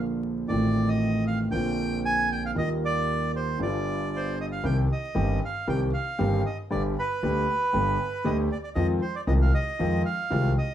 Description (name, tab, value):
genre	tango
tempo	116 BPM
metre	4/4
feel	rubato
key	C harmonic minor from 4.6 s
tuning	A4 = 442 Hz
part	warm concert grand piano	accompaniment	0.0-10.5 s	G1 to G4	-27 LUFS	equal	none
part	upright bass	bass	0.0-10.5 s	G1 to F2	-28 LUFS	equal	none
part	bandoneon	melody	0.5-10.7 s	B4 to Ab5	-29 LUFS	right 2 dB	none
room	wet studio reverb, RT60 0.7 s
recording	band playing live in one room, vinyl crackle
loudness	-24 LUFS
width	side -10 dB against mid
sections	0.0-4.6 A section; 4.6-10.7 B section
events	none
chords	0.0 Bb; 0.5 F7/A; 1.5 Bbadd9; 2.6 Ebadd9; 3.6 G7; 4.6 Cm; 6.7 G; 8.8 Fm7